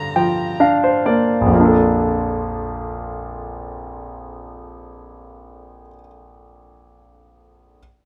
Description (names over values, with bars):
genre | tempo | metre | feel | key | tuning
pop | 64 BPM | 4/4 | straight | Bb major | A4 = 439 Hz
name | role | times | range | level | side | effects
rich violin | melody | 0.0-0.6 s | Bb5 | -34 LUFS | equal | delay
clear concert grand piano | accompaniment | 0.0-7.8 s | Bb1 to G5 | -19 LUFS | equal | none
room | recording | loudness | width
wet studio reverb, RT60 0.5 s | rough home demo mix | -18 LUFS | mono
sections
0.0-1.5 A section; 1.5-5.3 B section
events
grand piano fill 0.0-1.5; slowing down 0.0-1.5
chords
0.0 Gm7; 1.5 Bbmaj7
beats
0.60 | 1.53 2.46 3.40 4.34